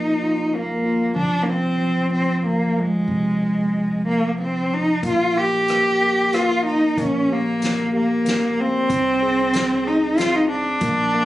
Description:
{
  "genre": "acoustic folk-pop ballad",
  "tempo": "94 BPM",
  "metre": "3/4",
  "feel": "straight",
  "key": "Eb major",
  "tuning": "A4 = 440 Hz",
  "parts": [
    { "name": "warm cello", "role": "melody", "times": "0.0-11.2 s", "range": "Ab3 to G4", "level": "-19 LUFS", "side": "equal", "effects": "none" },
    { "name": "tine electric piano", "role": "accompaniment", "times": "0.0-11.2 s", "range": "C3 to Ab4", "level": "-24 LUFS", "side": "equal", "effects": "overdrive" },
    { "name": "upright bass", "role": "bass", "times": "0.0-11.2 s", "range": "F1 to C2", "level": "-33 LUFS", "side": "equal", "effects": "none" },
    { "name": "soft-mallet drum kit", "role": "drums", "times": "5.0-11.0 s", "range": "hi-hat, kick drum, rim click, snare drum", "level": "-28 LUFS", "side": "left 1 dB", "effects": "none" }
  ],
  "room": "light reverb",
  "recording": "recorded on a phone in the room, club reverb, compression, nothing above 11.0 kHz",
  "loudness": "-18 LUFS",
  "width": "side -15 dB against mid",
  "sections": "0.0-5.0 A section; 5.0-11.2 B section",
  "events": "none",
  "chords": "0.0 Bbsus4; 1.2 Fm; 5.0 Ebadd9/Bb (rootless); 7.0 Bb5; 8.9 Ab/C",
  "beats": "0.53 | 1.17 1.80 2.45 | 3.09 3.73 4.38 | 5.03 5.68 6.33 | 6.97 7.61 8.25 | 8.89 9.53 10.17 | 10.81"
}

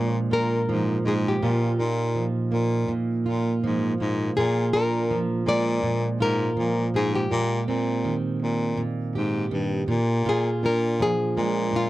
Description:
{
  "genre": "acoustic pop",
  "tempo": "81 BPM",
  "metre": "4/4",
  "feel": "swing 55% on 16ths",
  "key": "Bb mixolydian",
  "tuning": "A4 = 439 Hz",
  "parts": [
    { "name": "nylon-string guitar", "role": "melody", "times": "0.0-11.9 s", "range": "F4 to D5", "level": "-26 LUFS", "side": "left 2 dB", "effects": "none" },
    { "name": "fingerpicked plugged-in steel-string acoustic guitar", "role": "accompaniment", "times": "0.0-11.9 s", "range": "Bb2 to G4", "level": "-25 LUFS", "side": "right 2 dB", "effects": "none" },
    { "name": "breathy baritone saxophone", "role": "bass", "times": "0.0-11.9 s", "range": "G2 to Bb2", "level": "-26 LUFS", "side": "left 1 dB", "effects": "none" }
  ],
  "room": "little or no reverb",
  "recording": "dry, close 1970s-style studio recording",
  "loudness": "-22 LUFS",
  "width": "side -16 dB against mid",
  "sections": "0.0-11.9 A section",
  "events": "none",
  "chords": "0.0 Bb7; 1.4 Ebsus2/Bb; 7.3 Abmaj7/Bb; 9.9 Bb7",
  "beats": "0.68 | 1.41 2.15 2.89 3.63 | 4.36 5.10 5.84 6.57 | 7.31 8.05 8.79 9.52 | 10.26 10.99 11.73"
}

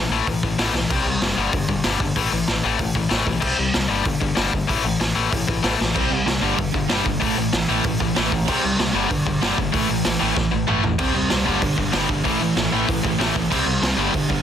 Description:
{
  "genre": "punk rock",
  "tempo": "190 BPM",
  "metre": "4/4",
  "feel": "straight",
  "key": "unclear",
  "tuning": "A4 = 440 Hz",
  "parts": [
    { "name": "tight distorted guitar", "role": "riff", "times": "0.0-14.4 s", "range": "G2 to C4", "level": "-22 LUFS", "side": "left 7 dB", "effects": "distortion" },
    { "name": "growling picked electric bass", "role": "bass", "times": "0.0-14.4 s", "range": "F#1 to C2", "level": "-27 LUFS", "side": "right 1 dB", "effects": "overdrive" },
    { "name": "raw garage drum kit", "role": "drums", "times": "0.3-14.4 s", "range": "crash cymbal, hi-hat, kick drum, snare drum, toms", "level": "-23 LUFS", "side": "right 1 dB", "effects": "soft clipping on kick" },
    { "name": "crunchy overdriven guitar", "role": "riff", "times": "5.9-14.4 s", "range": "G2 to C4", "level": "-26 LUFS", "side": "right 17 dB", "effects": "none" },
    { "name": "crunchy overdriven guitar", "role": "riff", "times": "11.0-14.4 s", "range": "G2 to C4", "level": "-27 LUFS", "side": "right 4 dB", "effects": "none" }
  ],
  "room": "little or no reverb",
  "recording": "dense, heavily limited modern master",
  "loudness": "-18 LUFS",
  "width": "side -9 dB against mid",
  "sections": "0.0-14.4 A section",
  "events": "drum fill 0.7, 5.8, 10.4-11.0",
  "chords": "0.0 A5; 0.9 C5; 1.4 G5; 2.2 A5; 3.4 C5; 3.9 G5; 4.7 A5; 6.0 C5; 6.4 G5; 7.2 A5; 8.5 C5; 8.9 G5; 9.7 A5; 11.0 C5; 11.5 G5; 12.3 A5; 13.5 C5",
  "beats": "0.27 0.58 | 0.90 1.22 1.53 1.85 | 2.16 2.48 2.79 3.11 | 3.43 3.74 4.06 4.37 | 4.69 5.01 5.32 5.64 | 5.95 6.27 6.58 6.90 | 7.21 7.53 7.85 8.16 | 8.48 8.79 9.11 9.42 | 9.74 10.05 10.37 10.68 | 11.00 11.31 11.63 11.94 | 12.26 12.57 12.88 13.20 | 13.51 13.83 14.14"
}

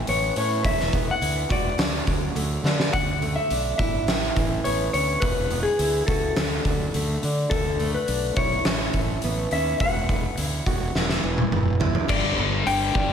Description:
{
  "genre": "quiet-loud alternative rock",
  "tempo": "105 BPM",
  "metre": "4/4",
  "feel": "straight",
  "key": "unclear",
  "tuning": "A4 = 439 Hz",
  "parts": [
    { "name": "picked acoustic archtop guitar", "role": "arpeggios", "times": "0.0-13.1 s", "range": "E2 to G4", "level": "-30 LUFS", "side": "right 3 dB", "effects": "slapback echo" },
    { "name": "clean electric guitar", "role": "melody", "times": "0.1-13.1 s", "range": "G#4 to G5", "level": "-26 LUFS", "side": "left 3 dB", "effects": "slapback echo, analog delay" },
    { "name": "fuzz fingered electric bass", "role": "bass", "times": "0.1-13.1 s", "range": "E1 to D3", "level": "-28 LUFS", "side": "equal", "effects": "overdrive" },
    { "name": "oversized low-tuned drum kit", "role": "drums", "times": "0.1-13.1 s", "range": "crash cymbal, hi-hat, kick drum, snare drum, toms", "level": "-25 LUFS", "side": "equal", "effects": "none" },
    { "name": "thick fuzz guitar", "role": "riff", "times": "12.1-13.1 s", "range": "G2 to G3", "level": "-26 LUFS", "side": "left 8 dB", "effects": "distortion, slapback echo" }
  ],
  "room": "moderate lush hall reverb, RT60 1.8 s",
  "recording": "big arena sound",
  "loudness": "-21 LUFS",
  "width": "side -8 dB against mid",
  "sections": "0.0-12.1 A section; 12.1-13.1 B section",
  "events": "drum fill 2.6, 10.9-12.1",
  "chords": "0.0 Aadd9; 0.6 Esus2; 1.8 D; 2.9 Dsus2; 4.1 Aadd9; 5.2 Esus2; 6.4 D; 7.5 Dsus2; 8.7 Aadd9; 9.8 Esus2; 12.1 G",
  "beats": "0.07 | 0.64 1.22 1.79 2.36 | 2.93 3.50 4.08 4.65 | 5.22 5.79 6.37 6.94 | 7.51 8.09 8.66 9.23 | 9.80 10.38 10.95 11.52 | 12.10 12.67"
}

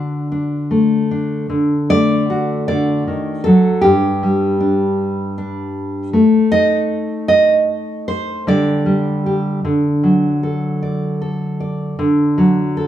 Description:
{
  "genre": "folk, solo fingerstyle acoustic guitar",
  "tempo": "51 BPM (dotted quarters)",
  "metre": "6/8",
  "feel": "rubato",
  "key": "unclear",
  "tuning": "A4 = 440 Hz",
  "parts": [
    { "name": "nylon-string guitar", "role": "solo", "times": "0.0-12.9 s", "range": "G2 to Eb5", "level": "-14 LUFS", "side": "equal", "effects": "none" }
  ],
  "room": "moderate large studio reverb, RT60 1.2 s",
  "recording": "band playing live in one room",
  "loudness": "-14 LUFS",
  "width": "side -11 dB against mid",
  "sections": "0.0-1.5 A section; 1.5-12.9 B section",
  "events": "none",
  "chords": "0.0 D; 3.8 G5; 6.1 Adim; 8.5 Dsus4; 9.6 D",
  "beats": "0.31 | 1.50 2.69 | 3.85 4.99 | 6.13 7.29 | 8.46 9.64 | 10.81 11.99"
}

